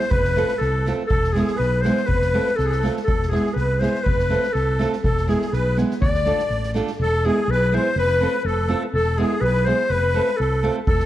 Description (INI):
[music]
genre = balkan folk, Balkan wedding band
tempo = 123 BPM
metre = 2/4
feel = straight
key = unclear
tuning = A4 = 440 Hz
[part]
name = clear clarinet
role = melody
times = 0.0-11.1 s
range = G#4 to D5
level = -23 LUFS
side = left 3 dB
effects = analog delay
[part]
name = musette accordion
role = second line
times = 0.0-11.1 s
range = G#4 to D5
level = -28 LUFS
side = right 4 dB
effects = none
[part]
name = nylon-string guitar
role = accompaniment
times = 0.0-10.8 s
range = G#3 to A4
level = -25 LUFS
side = right 3 dB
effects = none
[part]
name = soft-mallet drum kit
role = percussion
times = 0.0-6.9, 10.9-11.1 s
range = kick drum, snare drum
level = -26 LUFS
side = equal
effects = none
[part]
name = mellow fretless electric bass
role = bass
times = 0.1-11.1 s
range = E1 to D2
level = -23 LUFS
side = equal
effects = none
[sound]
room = light reverb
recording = dark, warm production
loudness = -18 LUFS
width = side -13 dB against mid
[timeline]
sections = 0.0-7.0 A section; 7.0-11.1 A section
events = none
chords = 0.1 F; 1.1 E; 2.1 F; 3.1 E; 4.1 F; 5.0 E; 6.0 Dm; 7.0 E; 8.0 F; 8.9 E; 9.9 F